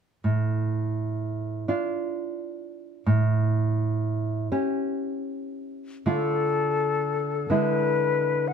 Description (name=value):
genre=romantic duo for flute and classical guitar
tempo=37-44 BPM (dotted quarters)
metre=6/8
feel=rubato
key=D minor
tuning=A4 = 436 Hz
part: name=nylon-string guitar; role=accompaniment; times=0.2-8.5 s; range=A2 to G4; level=-25 LUFS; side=right 2 dB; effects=none
part: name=bright concert flute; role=melody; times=6.1-8.5 s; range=A4 to F#5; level=-24 LUFS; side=left 9 dB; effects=plate reverb, tape echo
room=light reverb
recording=none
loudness=-24 LUFS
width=side -7 dB against mid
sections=0.2-6.1 A section; 6.1-8.5 B section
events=none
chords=0.2 Dm/A; 3.1 A7; 6.1 Dm; 7.5 E7/D